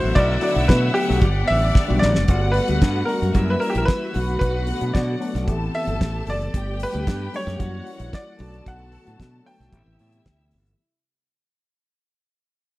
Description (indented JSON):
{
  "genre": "disco",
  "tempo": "113 BPM",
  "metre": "4/4",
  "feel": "straight",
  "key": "G major",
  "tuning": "A4 = 441 Hz",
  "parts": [
    { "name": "bright grand piano", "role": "melody", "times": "0.0-10.5 s", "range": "G4 to G5", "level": "-25 LUFS", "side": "equal", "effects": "none" },
    { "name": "warm studio string section", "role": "second line", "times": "0.0-10.8 s", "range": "D4 to A5", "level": "-31 LUFS", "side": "left 1 dB", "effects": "none" },
    { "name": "tine electric piano", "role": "accompaniment", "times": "0.0-10.8 s", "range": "E3 to G4", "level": "-28 LUFS", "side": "left 3 dB", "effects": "overdrive, phaser" },
    { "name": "warm studio string section", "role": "sustained chords", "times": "0.0-10.8 s", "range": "C3 to F#5", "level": "-32 LUFS", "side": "equal", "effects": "none" },
    { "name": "modern bright fingered electric bass", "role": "bass", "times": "0.0-10.7 s", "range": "F#1 to B2", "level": "-23 LUFS", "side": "equal", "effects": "none" },
    { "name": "damped 70s drum kit", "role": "drums", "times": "0.2-10.8 s", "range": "hi-hat, kick drum, snare drum", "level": "-19 LUFS", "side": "equal", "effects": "none" }
  ],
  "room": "little or no reverb",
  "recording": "dry, close 1970s-style studio recording",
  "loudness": "-18 LUFS",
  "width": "side -18 dB against mid",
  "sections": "0.0-2.3 A section; 2.3-10.8 B section",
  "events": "drum fill 1.8-2.3; fade-out 2.3-10.8",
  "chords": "0.0 Bm7; 1.2 Gmaj7; 2.3 Gmaj9; 3.3 F#7b9; 4.1 Bm7; 5.5 Am7; 6.5 Gmaj9; 7.6 F#7b9; 8.4 Bm7; 9.7 Am7"
}